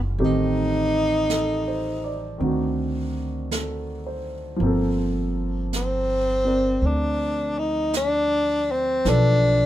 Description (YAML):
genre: jazz ballad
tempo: 54 BPM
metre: 4/4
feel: swing 68% on 8ths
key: G minor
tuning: A4 = 440 Hz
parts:
  - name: warm grand piano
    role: accompaniment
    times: 0.0-9.7 s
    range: D3 to D5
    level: -26 LUFS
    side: right 1 dB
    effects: none
  - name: upright bass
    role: bass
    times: 0.0-9.7 s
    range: F#1 to D2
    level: -26 LUFS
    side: right 1 dB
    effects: none
  - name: jazz brush drum kit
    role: drums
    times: 0.2-9.7 s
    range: brushed snare drum, hi-hat, snare drum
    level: -34 LUFS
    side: right 3 dB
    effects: none
  - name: breathy tenor saxophone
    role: melody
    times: 0.3-9.7 s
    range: C4 to Eb4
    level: -22 LUFS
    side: left 1 dB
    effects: none
room: light reverb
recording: minimal, uncompressed stereo recording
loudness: -21 LUFS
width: side -13 dB against mid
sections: 0.0-9.7 A section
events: none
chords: 0.2 Am7b5; 2.4 D7b9; 4.6 Gm11; 9.0 Bm7b5